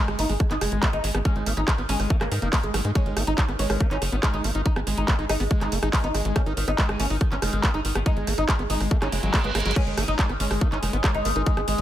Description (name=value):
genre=psychedelic trance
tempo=141 BPM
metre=4/4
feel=straight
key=G# minor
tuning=A4 = 440 Hz
part: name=oud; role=melody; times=0.0-11.8 s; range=D#3 to D#4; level=-30 LUFS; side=equal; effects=phaser, sidechain pumping, digital delay
part: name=screaming distorted acid line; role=riff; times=0.0-11.8 s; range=F#3 to D#4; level=-31 LUFS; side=equal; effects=distortion, chorus, auto-pan, sidechain pumping, dub echo
part: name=tight sequencer bass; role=bass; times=0.1-11.8 s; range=F#1 to G#2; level=-27 LUFS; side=equal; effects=none
part: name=drum and bass drum kit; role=drums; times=0.1-11.8 s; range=crash cymbal, handclaps, hi-hat, rim click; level=-28 LUFS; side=right 1 dB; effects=none
part: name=electronic kick drum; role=drums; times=0.4-11.6 s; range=none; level=-22 LUFS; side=equal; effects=overdrive
part: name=reverse cymbal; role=sound effects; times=9.1-9.8 s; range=none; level=-31 LUFS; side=right 4 dB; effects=none
part: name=overtone-sweeping drone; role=sustained chords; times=10.4-11.8 s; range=G#3 to G#4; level=-31 LUFS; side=left 3 dB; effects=chorus, built-in reverb, phaser, sidechain pumping
room=digital ambience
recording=none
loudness=-21 LUFS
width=side -12 dB against mid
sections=0.0-11.8 A section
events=reverse cymbal 9.1-9.8; drum fill 9.5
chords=0.0 G#5